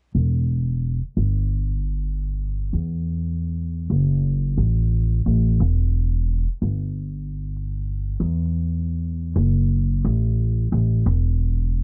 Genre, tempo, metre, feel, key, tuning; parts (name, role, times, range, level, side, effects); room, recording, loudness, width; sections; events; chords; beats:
trip hop; 88 BPM; 4/4; swing 58% on 16ths; E minor; A4 = 444 Hz
upright bass; bass; 0.1-11.8 s; E1 to E2; -22 LUFS; equal; transformer saturation
little or no reverb; dry, gritty hardware recording, vinyl crackle, low-pass filter; -22 LUFS; mono
0.1-11.8 A section
filter sweep 0.1-11.8
| 0.15 0.83 1.51 2.19 | 2.87 3.56 4.24 4.92 | 5.60 6.28 6.96 7.65 | 8.33 9.01 9.69 10.37 | 11.06 11.74